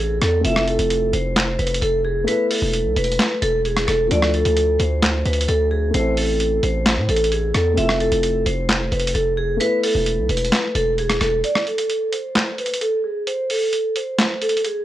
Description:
hip hop, trap; 131 BPM; 4/4; half-time; A4 = 442 Hz
vibraphone with hard mallets; melody; 0.0-14.8 s; G#4 to E5; -21 LUFS; right 1 dB; low-pass filter
dark concert grand piano; accompaniment; 0.0-11.5 s; F3 to B4; -27 LUFS; left 2 dB; low-pass filter
distorted 808-style bass; bass; 0.0-11.4 s; E1 to A2; -22 LUFS; equal; distortion
boom bap sampler-style drum kit; drums; 0.2-14.8 s; handclaps, hi-hat, rim click, snare drum; -22 LUFS; equal
little or no reverb; dry, gritty hardware recording, cassette tape; -17 LUFS; side -13 dB against mid
0.0-11.4 A section; 11.4-14.8 B section
kick muted 11.4-14.8
0.4 Fmaj7; 2.3 Esus4; 4.1 Dm; 5.9 Am; 7.8 Fmaj7; 9.6 Esus4; 11.4 N.C.
| 0.45 0.90 1.36 1.82 | 2.28 2.74 3.19 3.65 | 4.11 4.57 5.03 5.48 | 5.94 6.40 6.86 7.32 | 7.77 8.23 8.69 9.15 | 9.61 10.06 10.52 10.98 | 11.44 11.90 12.35 12.81 | 13.27 13.73 14.19 14.64

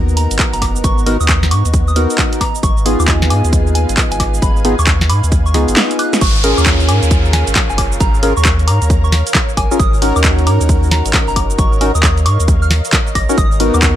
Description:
UK garage, two-step garage; 134 BPM; 4/4; swing 63% on 16ths; A4 = 440 Hz
soft string machine; sustained chords; 0.0-14.0 s; B3 to A#5; -25 LUFS; right 1 dB; ensemble chorus, sidechain pumping
percussive organ stab; stabs; 0.0-14.0 s; B3 to A#4; -18 LUFS; left 1 dB; analog chorus, ping-pong delay
saturated sub bass; bass; 0.0-14.0 s; F#1 to G#2; -14 LUFS; equal
punchy analog drum machine; drums; 0.1-13.9 s; crash cymbal, handclaps, hi-hat, shaker, snare drum, woodblock; -17 LUFS; equal
soft synth bell; melody; 0.2-13.6 s; G#5 to A#6; -23 LUFS; right 2 dB; chorus, ping-pong delay
electronic kick drum; drums; 0.4-13.9 s; -15 LUFS; equal; overdrive
downlifter; sound effects; 6.2-9.8 s; -23 LUFS; equal
digital ambience; -11 LUFS; side -12 dB against mid
0.0-6.2 A section; 6.2-14.0 B section
drum fill 5.8-6.2; drop 6.2-14.0
0.0 G#m7; 2.4 C#7/G# (rootless); 6.2 F#maj13; 13.4 G#m7
0.39 | 0.84 1.29 1.74 2.18 | 2.63 3.08 3.53 3.98 | 4.42 4.87 5.32 5.77 | 6.21 6.66 7.11 7.56 | 8.01 8.45 8.90 9.35 | 9.80 10.24 10.69 11.14 | 11.59 12.04 12.48 12.93 | 13.38 13.83

